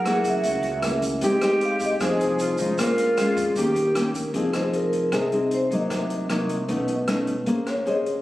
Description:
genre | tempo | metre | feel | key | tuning
bossa nova | 154 BPM | 4/4 | straight | F minor from 4.3 s | A4 = 440 Hz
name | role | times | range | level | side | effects
vibraphone with soft mallets | melody | 0.0-8.2 s | G4 to Gb5 | -26 LUFS | equal | none
silver concert flute | second line | 0.0-4.1 s | Eb4 to Ab4 | -29 LUFS | right 2 dB | none
nylon-string guitar | accompaniment | 0.0-8.2 s | Bb2 to C5 | -23 LUFS | left 1 dB | none
open jazz drum kit | drums | 0.1-8.2 s | hi-hat, kick drum, rim click | -33 LUFS | equal | none
upright bass | bass | 0.2-8.2 s | F1 to Ab2 | -38 LUFS | right 1 dB | none
tube shaker | percussion | 0.2-4.3 s | none | -40 LUFS | right 3 dB | none
room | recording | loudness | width
light reverb | recorded on a phone in the room, studio reverb, compression | -21 LUFS | side -16 dB against mid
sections
0.0-4.3 A section; 4.3-8.2 B section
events
none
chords
0.0 Gb9; 1.2 Abmaj7; 2.0 Fm7; 2.8 Bbm7; 3.6 Eb7; 4.3 Fm7; 5.9 Cm7b5; 6.7 B9; 7.5 Bbm9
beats
0.05 0.44 0.83 | 1.22 1.61 2.00 2.39 | 2.78 3.17 3.56 3.96 | 4.35 4.74 5.13 5.52 | 5.91 6.30 6.69 7.08 | 7.47 7.87

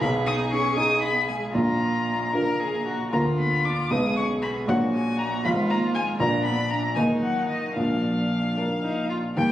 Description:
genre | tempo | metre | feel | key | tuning
quick classical-period movement for piano quartet | 74-82 BPM (dotted quarters) | 6/8 | rubato | unclear | A4 = 443 Hz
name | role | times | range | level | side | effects
muted violin | melody | 0.0-9.5 s | Eb5 to Eb6 | -27 LUFS | left 3 dB | none
muted cello | second line | 0.0-9.5 s | Eb3 to Eb4 | -32 LUFS | right 4 dB | none
muted violin | second line | 0.0-9.5 s | D4 to Bb4 | -31 LUFS | left 1 dB | none
dark grand piano | accompaniment | 0.0-9.5 s | Ab1 to F5 | -24 LUFS | equal | none
room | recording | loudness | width
moderate recital hall reverb, RT60 1.4 s | recorded on a phone in the room, studio reverb, compression | -22 LUFS | side -12 dB against mid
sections
0.0-9.4 A section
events
none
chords
0.0 Abm/Cb; 1.5 Bb; 3.1 Bb/D; 3.9 Abm/Cb; 4.7 Gb/Bb; 5.4 Abm69; 6.2 Bb; 7.0 Eb5; 7.8 Bb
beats
| 0.01 0.77 | 1.55 2.33 | 3.12 3.91 | 4.68 5.44 | 6.19 6.96 | 7.76 8.57 | 9.37

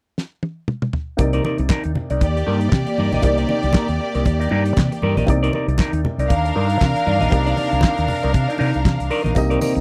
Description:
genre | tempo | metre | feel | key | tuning
disco | 118 BPM | 4/4 | swing 56% on 16ths | C minor | A4 = 440 Hz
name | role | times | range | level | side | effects
damped 70s drum kit | drums | 0.2-9.8 s | handclaps, hi-hat, kick drum, snare drum, toms | -21 LUFS | equal | none
semi-hollow electric guitar | accompaniment | 1.2-9.8 s | Eb4 to Eb5 | -26 LUFS | equal | phaser
warm baby grand piano | accompaniment | 1.2-9.8 s | C3 to Eb5 | -30 LUFS | equal | none
fingered electric bass | bass | 1.2-9.8 s | Bb1 to C3 | -23 LUFS | equal | none
congas | percussion | 1.2-9.8 s | none | -30 LUFS | equal | none
clear studio string section | second line | 2.2-9.3 s | Bb3 to F5 | -25 LUFS | equal | none
percussive tonewheel organ | sustained chords | 9.4-9.8 s | C3 to Eb4 | -25 LUFS | equal | overdrive, stopped rotary speaker
tambourine | percussion | 9.4-9.8 s | none | -39 LUFS | equal | none
room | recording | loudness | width
little or no reverb | dry, close 1970s-style studio recording | -19 LUFS | mono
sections
0.0-1.2 A section; 1.2-9.8 B section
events
drum fill 0.2-1.2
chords
0.0 N.C.; 1.2 Cm9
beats
0.17 0.68 | 1.19 1.71 2.22 2.73 | 3.24 3.75 4.26 4.77 | 5.28 5.79 6.30 6.81 | 7.32 7.83 8.35 8.86 | 9.37

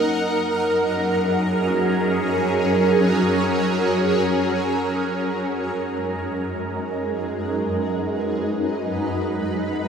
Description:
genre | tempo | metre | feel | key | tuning
ambient | free time | none | none | unclear | A4 = 440 Hz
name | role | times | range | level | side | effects
shimmering ambient pad | sustained chords | 0.0-9.9 s | F#2 to F#5 | -20 LUFS | right 1 dB | chorus, built-in reverb, phaser
felt-muted upright piano | arpeggios | 0.0-4.9 s | A#3 to C#5 | -35 LUFS | equal | none
rich studio cello section | bass | 0.1-4.9 s | F#2 | -26 LUFS | equal | none
room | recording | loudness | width
wet huge ambient reverb, RT60 9.2 s | dreamy mix soaked in reverb | -19 LUFS | side -6 dB against mid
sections
0.0-4.9 A section; 4.9-9.9 B section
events
none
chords
0.1 F#; 4.9 G#m7/F#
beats
free time

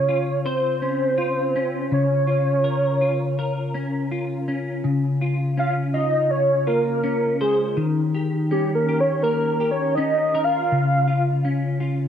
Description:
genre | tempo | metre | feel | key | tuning
indie pop | 82 BPM | 4/4 | straight | Db lydian | A4 = 440 Hz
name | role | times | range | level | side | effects
soft octave-layered synth lead | melody | 0.0-11.5 s | G4 to F5 | -21 LUFS | right 1 dB | ensemble chorus, slapback echo
clean electric guitar | accompaniment | 0.0-12.1 s | Db3 to Db5 | -23 LUFS | left 2 dB | ensemble chorus, warbly pitch drift
room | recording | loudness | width
light reverb | none | -19 LUFS | side -8 dB against mid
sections
0.0-4.8 A section; 4.8-12.1 B section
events
soft synth lead solo 4.8-12.1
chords
0.0 Dbmaj7; 1.9 Db6; 4.8 Dbmaj7; 7.8 Eb7; 10.7 Db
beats
0.45 1.18 | 1.92 2.65 3.38 4.11 | 4.85 5.58 6.31 7.04 | 7.78 8.51 9.24 9.97 | 10.71 11.44

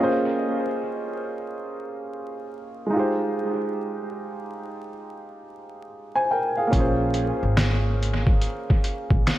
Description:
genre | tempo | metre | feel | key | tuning
lo-fi hip hop | 71 BPM | 4/4 | swing 62% on 16ths | Bb dorian | A4 = 440 Hz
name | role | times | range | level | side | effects
warm upright piano | accompaniment | 0.0-9.4 s | Ab3 to Ab5 | -25 LUFS | right 1 dB | cassette tape, analog delay
upright bass | bass | 6.7-9.2 s | Ab1 to Bb1 | -24 LUFS | equal | none
lo-fi sampler-style drum kit | drums | 6.7-9.4 s | finger snaps, hi-hat, kick drum, snare drum | -21 LUFS | equal | overdrive, vintage 12-bit sampler grit, analog delay
room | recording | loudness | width
moderate echo chamber reverb, RT60 2.2 s | echo-heavy mix, vinyl crackle | -22 LUFS | side -14 dB against mid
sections
0.0-9.4 A section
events
none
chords
0.0 Bbm9; 2.9 Fm9; 6.7 Bbm9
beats
0.81 1.66 2.50 | 3.35 4.19 5.04 5.88 | 6.73 7.57 8.42 9.26

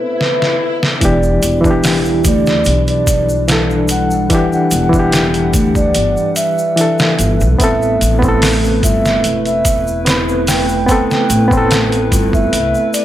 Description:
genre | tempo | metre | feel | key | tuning
trip hop | 73 BPM | 4/4 | straight | E minor | A4 = 443 Hz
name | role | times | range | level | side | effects
pure breathy sine lead | melody | 0.0-13.0 s | B4 to G5 | -18 LUFS | right 1 dB | chorus, tape echo
barky reed electric piano | accompaniment | 0.0-13.0 s | E3 to B4 | -17 LUFS | equal | overdrive, tremolo, vintage 12-bit sampler grit, tape echo
swell | sound effects | 0.0-1.0 s | none | -22 LUFS | left 4 dB | none
trip hop sampler-style drum kit | drums | 0.2-13.0 s | hi-hat, kick drum, snare drum | -17 LUFS | equal | none
warbly tape-like pad | sustained chords | 1.6-13.0 s | G3 to F#5 | -21 LUFS | right 1 dB | chorus, built-in reverb
upright bass | bass | 1.0-12.7 s | E1 to D2 | -17 LUFS | equal | none
egg shaker | percussion | 1.0-13.0 s | none | -26 LUFS | left 1 dB | none
room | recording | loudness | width
light reverb, digital ambience | none | -11 LUFS | side -12 dB against mid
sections
0.0-1.0 A section; 1.0-13.0 B section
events
break 0.0-1.0; swell 0.0-1.0; drum fill 0.2-1.0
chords
0.0 Amadd9; 1.0 Em7; 7.6 Amadd9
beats
0.20 | 1.02 1.84 2.66 3.48 | 4.30 5.13 5.95 6.77 | 7.59 8.41 9.24 10.06 | 10.88 11.70 12.52

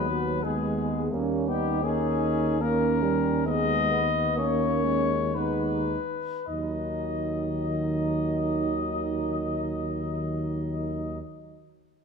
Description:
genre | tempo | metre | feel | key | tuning
classical, hymn-like piece for brass band | 52-87 BPM | 3/4 | rubato | Eb minor | A4 = 440 Hz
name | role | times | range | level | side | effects
mellow trumpet section | melody | 0.0-11.2 s | G4 to Eb5 | -30 LUFS | left 5 dB | none
mellow French horn section | second line | 0.0-11.2 s | Cb4 to Eb4 | -30 LUFS | right 6 dB | none
clear trombone | accompaniment | 0.0-11.2 s | Eb3 to Db4 | -34 LUFS | right 2 dB | none
mellow euphonium | accompaniment | 0.0-11.2 s | Gb3 to Bb3 | -34 LUFS | left 3 dB | none
mellow tuba | bass | 0.0-11.2 s | Eb2 | -31 LUFS | left 1 dB | none
room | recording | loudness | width
moderate scoring stage reverb, RT60 2.0 s | none | -24 LUFS | side -5 dB against mid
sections
0.0-6.5 A section; 6.5-12.0 B section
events
slowing down 0.1-6.5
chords
0.0 Abm/Eb; 1.1 Eb7; 3.5 Abm/Eb; 6.5 Ebm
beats
0.44 | 1.12 1.84 2.60 | 3.47 4.37 5.36 | 6.48 7.60 8.71 | 9.82 10.92

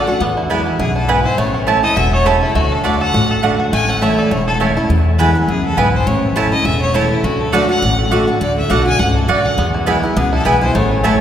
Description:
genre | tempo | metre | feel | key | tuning
bluegrass | 205 BPM | 4/4 | swing 56% on 8ths | A major | A4 = 436 Hz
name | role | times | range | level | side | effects
bluegrass banjo | melody | 0.0-4.9, 9.6-11.2 s | A3 to A4 | -24 LUFS | right 1 dB | none
clear fiddle | melody | 0.0-11.0 s | E4 to G#5 | -20 LUFS | left 1 dB | none
picked steel-string acoustic guitar | accompaniment | 0.0-11.2 s | E2 to F#4 | -18 LUFS | left 1 dB | none
upright bass | bass | 0.0-11.2 s | E1 to E2 | -18 LUFS | equal | none
mandolin | stabs | 0.5-11.1 s | A3 to A5 | -19 LUFS | right 2 dB | none
room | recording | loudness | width
wet cathedral reverb, RT60 4.7 s | recorded in a church or concert hall | -12 LUFS | side -10 dB against mid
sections
0.0-4.9 A section; 4.9-11.2 A section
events
none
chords
0.2 E; 1.4 A; 2.6 D; 3.7 A; 4.9 E; 6.1 A; 7.2 D; 9.6 E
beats
| 0.21 0.50 0.80 1.09 | 1.38 1.68 1.97 2.26 | 2.56 2.85 3.14 3.43 | 3.73 4.02 4.31 4.61 | 4.90 5.19 5.49 5.78 | 6.07 6.36 6.66 6.95 | 7.24 7.53 7.83 8.12 | 8.41 8.70 8.99 9.29 | 9.58 9.87 10.16 10.46 | 10.75 11.04

